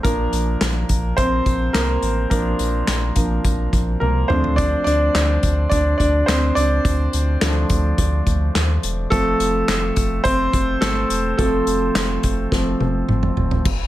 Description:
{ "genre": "piano-driven pop", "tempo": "106 BPM", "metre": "4/4", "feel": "straight", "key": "unclear", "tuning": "A4 = 440 Hz", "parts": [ { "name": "clear concert grand piano", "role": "accompaniment", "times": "0.0-13.7 s", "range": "F3 to D5", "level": "-20 LUFS", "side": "equal", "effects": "plate reverb" }, { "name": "warm sub bass", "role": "bass", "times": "0.0-13.9 s", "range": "E1 to Eb2", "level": "-21 LUFS", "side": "equal", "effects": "none" }, { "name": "unplugged drum kit", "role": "drums", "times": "0.0-13.8 s", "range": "crash cymbal, handclaps, hi-hat, kick drum, snare drum, toms", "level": "-22 LUFS", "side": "equal", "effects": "none" } ], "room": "light reverb, studio reverb", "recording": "none", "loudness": "-16 LUFS", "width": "side -14 dB against mid", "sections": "0.0-13.7 A section", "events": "grand piano solo 0.0-13.7; drum fill 4.0-4.6, 12.5-13.7", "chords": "0.0 Bb; 4.3 Dm; 9.1 F", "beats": "| 0.04 0.61 1.18 1.75 | 2.31 2.88 3.45 4.01 | 4.58 5.15 5.71 6.28 | 6.85 7.42 7.98 8.55 | 9.12 9.68 10.25 10.82 | 11.38 11.95 12.52 13.09 | 13.65" }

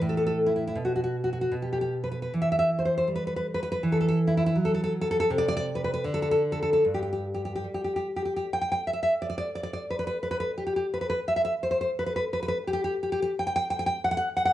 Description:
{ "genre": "romantic piece for solo classical guitar", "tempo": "72-90 BPM", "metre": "2/4", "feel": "rubato", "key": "E minor, G major from 5.3 s", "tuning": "A4 = 442 Hz", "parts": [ { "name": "nylon-string guitar", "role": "solo", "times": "0.0-14.5 s", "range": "G2 to G5", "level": "-25 LUFS", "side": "equal", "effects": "none" } ], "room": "moderate large studio reverb, RT60 1.2 s", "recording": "band playing live in one room, nothing above 10.8 kHz", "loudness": "-25 LUFS", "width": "side -13 dB against mid", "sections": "0.0-8.5 A section; 8.5-14.5 B section", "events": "none", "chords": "0.0 N.C.; 2.3 Em; 3.8 Esus24; 5.3 N.C.", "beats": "0.00 | 0.77 1.57 | 2.33 3.08 | 3.82 4.56 | 5.29 6.04 | 6.84 7.67 | 8.45 9.15 | 9.84 10.52 | 11.20 11.88 | 12.57 13.29 | 13.96" }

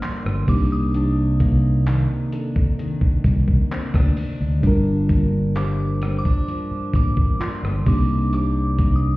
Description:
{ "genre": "contemporary R&B", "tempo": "65 BPM", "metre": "4/4", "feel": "straight", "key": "unclear", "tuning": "A4 = 440 Hz", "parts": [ { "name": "glassy synth bell", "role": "melody", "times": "0.0-9.2 s", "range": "C6 to Eb6", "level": "-32 LUFS", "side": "right 1 dB", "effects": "chorus, phaser, ping-pong delay" }, { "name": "mellow tine electric piano", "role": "accompaniment", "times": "0.0-9.2 s", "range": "C3 to Bb4", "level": "-25 LUFS", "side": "right 2 dB", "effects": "analog chorus" }, { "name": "picked steel-string acoustic guitar", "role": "arpeggios", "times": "0.0-9.2 s", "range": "G2 to D4", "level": "-28 LUFS", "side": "left 4 dB", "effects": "none" }, { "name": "fingered electric bass", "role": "bass", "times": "0.0-9.2 s", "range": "G1 to D2", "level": "-20 LUFS", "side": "equal", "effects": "none" }, { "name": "dusty soul sampler-style drum kit", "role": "drums", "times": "0.0-9.0 s", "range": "handclaps, hi-hat, kick drum, rim click", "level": "-21 LUFS", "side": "equal", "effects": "none" }, { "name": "glassy wavetable pluck", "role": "texture", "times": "2.3-8.3 s", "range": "F4 to A4", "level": "-39 LUFS", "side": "right 1 dB", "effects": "chorus, ping-pong delay" } ], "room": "little or no reverb", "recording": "heard muffled through a wall, stone room reverb, EQ", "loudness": "-17 LUFS", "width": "side -20 dB against mid", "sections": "0.0-9.2 A section", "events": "none", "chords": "0.5 Cm9; 4.6 Gm7; 7.9 Cm9", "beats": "0.02 | 0.94 1.86 2.79 3.71 | 4.63 5.56 6.48 7.40 | 8.33" }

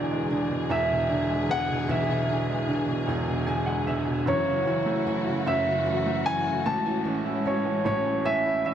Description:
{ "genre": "six-eight pop ballad", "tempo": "50 BPM (dotted quarters)", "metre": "6/8", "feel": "straight", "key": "unclear", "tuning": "A4 = 439 Hz", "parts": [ { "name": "warm concert grand piano", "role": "melody", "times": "0.0-8.7 s", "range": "C#5 to A5", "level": "-28 LUFS", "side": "right 1 dB", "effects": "ping-pong delay" }, { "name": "clear upright piano", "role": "accompaniment", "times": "0.0-8.7 s", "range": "E1 to G#5", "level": "-28 LUFS", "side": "right 2 dB", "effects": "none" }, { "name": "dark studio string section", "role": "sustained chords", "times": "0.0-8.7 s", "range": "E3 to G#4", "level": "-32 LUFS", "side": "left 3 dB", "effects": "none" }, { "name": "fingerpicked plugged-in steel-string acoustic guitar", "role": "arpeggios", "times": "0.0-8.7 s", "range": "E3 to G#4", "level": "-34 LUFS", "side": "left 3 dB", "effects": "none" } ], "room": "wet concert hall reverb, RT60 2.0 s, small room ambience", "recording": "dark, warm production", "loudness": "-23 LUFS", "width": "side -9 dB against mid", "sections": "0.0-8.7 A section", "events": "upright piano fill 3.1-4.3, 7.9-8.7", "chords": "0.0 E7; 4.3 F#m7; 6.7 Amaj7", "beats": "0.70 | 1.89 3.08 | 4.28 5.47 | 6.66 7.85" }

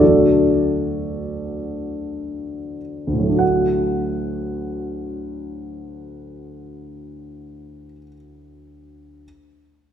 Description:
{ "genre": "classical", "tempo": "free time", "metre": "none", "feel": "none", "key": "D major", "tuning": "A4 = 440 Hz", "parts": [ { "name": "dark concert grand piano", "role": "accompaniment", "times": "0.0-9.3 s", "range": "D2 to F#5", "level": "-19 LUFS", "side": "equal", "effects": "none" } ], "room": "wet scoring stage reverb, RT60 2.0 s", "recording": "minimal, uncompressed stereo recording", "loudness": "-19 LUFS", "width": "side -9 dB against mid", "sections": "0.0-3.4 A section; 3.4-7.0 B section", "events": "slowing down 0.0-3.4", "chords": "0.0 D", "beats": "free time" }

